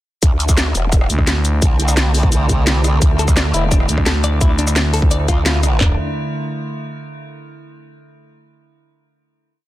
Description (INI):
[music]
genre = dark technical drum and bass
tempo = 172 BPM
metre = 4/4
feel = straight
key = unclear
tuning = A4 = 440 Hz
[part]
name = metallic inharmonic drone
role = sustained chords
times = 0.8-6.0 s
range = D3 to E4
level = -24 LUFS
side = right 1 dB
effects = chorus, built-in reverb, sidechain pumping
[part]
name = growl bass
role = bass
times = 0.2-6.0 s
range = D1 to D2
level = -17 LUFS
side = equal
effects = chorus, sidechain pumping
[part]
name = drum and bass drum kit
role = drums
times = 0.2-5.9 s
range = handclaps, kick drum, toms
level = -15 LUFS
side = equal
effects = none
[part]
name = drum and bass drum kit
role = drums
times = 0.2-5.7 s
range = hi-hat, rim click, shaker, snare drum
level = -20 LUFS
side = equal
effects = none
[part]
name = growling FM bass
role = bass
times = 1.1-1.6, 3.9-5.3 s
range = D2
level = -17 LUFS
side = equal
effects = none
[part]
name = clean electric guitar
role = arpeggios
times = 3.2-6.0 s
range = D4 to D5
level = -24 LUFS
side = left 3 dB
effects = sidechain pumping, digital delay
[sound]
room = digital ambience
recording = dense, heavily limited modern master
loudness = -13 LUFS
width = side -15 dB against mid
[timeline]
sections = 0.2-5.8 drop; 5.8-7.2 final chord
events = drop 0.2-5.8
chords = 0.2 D5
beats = | 0.23 0.57 0.92 1.27 | 1.62 1.97 2.32 2.67 | 3.02 3.37 3.71 4.06 | 4.41 4.76 5.11 5.46 | 5.81